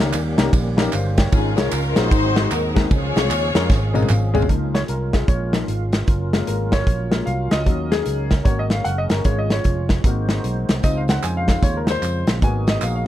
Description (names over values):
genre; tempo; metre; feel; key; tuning
uptempo gospel; 152 BPM; 4/4; swing 63% on 8ths; Db major; A4 = 442 Hz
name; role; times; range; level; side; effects
warm studio string section; melody; 0.0-4.1 s; Bb3 to Db5; -24 LUFS; left 2 dB; none
warm baby grand piano; accompaniment; 0.0-13.1 s; Ab2 to Ab5; -24 LUFS; left 4 dB; none
tonewheel organ; sustained chords; 0.0-13.1 s; Db3 to F5; -31 LUFS; right 2 dB; slow rotary speaker, overdrive, chorus vibrato
fingered electric bass; bass; 0.0-13.1 s; F1 to F2; -23 LUFS; right 1 dB; none
natural country drum kit; drums; 0.0-12.9 s; hi-hat, kick drum, ride cymbal, snare drum, toms; -19 LUFS; equal; none
handclaps and tambourine; percussion; 0.1-4.4, 10.8-12.9 s; none; -33 LUFS; right 6 dB; none
mellow French horn section; sustained chords; 4.5-13.1 s; Db3 to C5; -35 LUFS; right 2 dB; none
room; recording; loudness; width
little or no reverb; dark, warm production; -17 LUFS; side -12 dB against mid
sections
0.0-4.5 A section; 4.5-13.1 B section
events
drum fill 3.7-4.5; grand piano fill 3.7-4.5; grand piano solo 4.5-13.1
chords
0.0 Eb7; 1.3 Db/Ab; 2.1 Ab7; 2.9 Dbmaj7; 6.1 Gbmaj7; 7.7 Ebm7; 8.5 Ab9sus4; 9.3 Db/Ab; 10.0 Ab7; 10.8 Dbmaj7; 12.4 Abm7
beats
0.14 0.53 0.93 | 1.32 1.72 2.12 2.51 | 2.91 3.30 3.70 4.10 | 4.49 4.89 5.29 5.68 | 6.08 6.48 6.88 7.27 | 7.67 8.07 8.46 8.86 | 9.26 9.65 10.05 10.44 | 10.84 11.23 11.63 12.03 | 12.42 12.82